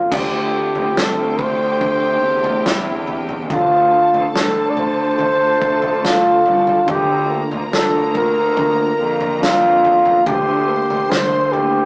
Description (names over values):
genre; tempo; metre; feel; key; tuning
pop ballad; 71 BPM; 4/4; straight; unclear; A4 = 440 Hz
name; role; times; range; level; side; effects
breathy flugelhorn; melody; 0.0-11.9 s; E4 to D5; -15 LUFS; equal; none
warm grand piano; accompaniment; 0.0-11.9 s; D3 to C5; -25 LUFS; equal; none
ethereal airy pad; sustained chords; 0.0-11.9 s; D3 to A4; -28 LUFS; equal; none
rich studio violin section; second line; 0.1-11.9 s; Bb3 to C6; -28 LUFS; equal; none
bright chamber cello section; bass; 0.1-11.9 s; C2 to F2; -24 LUFS; equal; none
natural country drum kit; drums; 0.1-11.7 s; crash cymbal, kick drum, snare drum, toms; -23 LUFS; equal; none
room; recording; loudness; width
moderate studio reverb, RT60 0.6 s; rough rehearsal-room recording, tube saturation, small speaker sound; -14 LUFS; side -39 dB against mid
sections
0.1-11.9 A section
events
none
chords
0.1 Am7/D; 3.5 Dm; 6.9 Bb/D; 10.3 C7/D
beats
| 0.12 0.96 1.81 2.65 | 3.50 4.34 5.19 6.03 | 6.88 7.72 8.57 9.41 | 10.26 11.11